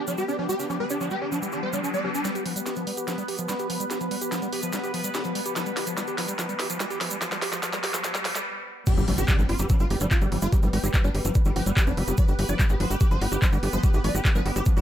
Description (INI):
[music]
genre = psychedelic trance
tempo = 145 BPM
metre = 4/4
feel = straight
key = unclear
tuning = A4 = 440 Hz
[part]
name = swarming rave lead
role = melody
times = 0.0-2.2, 8.9-14.8 s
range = G3 to D5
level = -31 LUFS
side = equal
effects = chorus, phaser, sidechain pumping, ping-pong delay
[part]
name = bubbling stepped-filter texture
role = sustained chords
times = 0.0-14.8 s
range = B3 to B4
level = -33 LUFS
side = left 1 dB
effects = chorus, built-in reverb, sidechain pumping
[part]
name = overdriven acid bass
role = riff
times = 0.0-14.8 s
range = F3 to G4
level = -32 LUFS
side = moving between left 5 dB and right 5 dB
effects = auto-pan, cassette tape, sidechain pumping, dub echo
[part]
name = riser and impact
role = sound effects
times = 0.5-10.5 s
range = none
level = -34 LUFS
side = equal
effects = none
[part]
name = egg shaker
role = percussion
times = 0.1-14.8 s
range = none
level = -36 LUFS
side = right 4 dB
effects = none
[part]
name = drum and bass drum kit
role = drums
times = 2.2-14.8 s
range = crash cymbal, handclaps, hi-hat, snare drum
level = -31 LUFS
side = equal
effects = overdrive, high-pass filter on snare, high-pass filter on hats, high-pass filter on cymbals, high-pass filter on room
[part]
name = electronic kick drum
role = drums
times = 8.9-14.7 s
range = none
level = -21 LUFS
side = equal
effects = overdrive
[part]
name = tight sequencer bass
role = bass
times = 9.0-14.8 s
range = F1 to Ab1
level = -26 LUFS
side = equal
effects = tube saturation
[sound]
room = little or no reverb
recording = high-pass filter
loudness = -23 LUFS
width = side -11 dB against mid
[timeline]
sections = 0.0-2.2 A section; 2.2-8.9 B section; 8.9-14.8 C section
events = filter sweep on acid bass 0.0-2.2, 2.2-8.9; riser 0.5-2.2, 2.2-8.5; build-up 2.2-8.9; drum fill 2.2-8.5; stop 8.5-8.9; drop 8.9-14.8; impact 8.9-10.5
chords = 0.0 G5